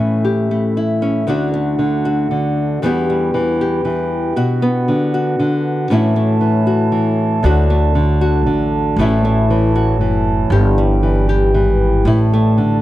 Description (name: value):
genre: acoustic folk duo or small band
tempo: 117 BPM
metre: 3/4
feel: straight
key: D major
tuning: A4 = 440 Hz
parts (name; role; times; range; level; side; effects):
- nylon-string guitar; accompaniment; 0.0-12.8 s; D2 to G4; -15 LUFS; left 1 dB; none
- glass harmonica; sustained chords; 0.0-12.8 s; C#4 to A5; -22 LUFS; right 2 dB; none
- upright bass; bass; 7.4-12.8 s; F#1 to D2; -16 LUFS; equal; none
room: little or no reverb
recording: dry, close 1970s-style studio recording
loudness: -13 LUFS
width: side -15 dB against mid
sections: 0.0-1.3 A section; 1.3-12.8 B section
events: none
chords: 0.0 A; 1.3 D; 2.8 Em; 4.3 Bm; 5.9 A; 7.4 D; 9.0 A; 10.5 Em/G; 12.1 Asus4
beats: 0.24 0.76 | 1.27 1.78 2.30 | 2.81 3.32 3.84 | 4.35 4.86 5.38 | 5.89 6.40 6.92 | 7.43 7.94 8.46 | 8.97 9.49 10.00 | 10.52 11.03 11.54 | 12.06 12.57